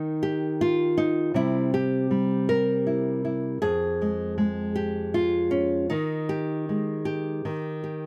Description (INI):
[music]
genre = folk, solo fingerstyle acoustic guitar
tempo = 79 BPM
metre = 3/4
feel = straight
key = unclear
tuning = A4 = 440 Hz
[part]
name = nylon-string guitar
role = solo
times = 0.0-8.1 s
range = F2 to Bb4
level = -26 LUFS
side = equal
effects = none
[sound]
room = light reverb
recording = close, detailed microphones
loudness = -26 LUFS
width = mono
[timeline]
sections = 0.0-8.1 A section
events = none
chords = 0.0 N.C.; 1.3 C; 3.6 Fm; 5.9 Ebsus4; 7.4 Eb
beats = 0.59 | 1.35 2.10 2.86 | 3.62 4.38 5.14 | 5.90 6.67 7.44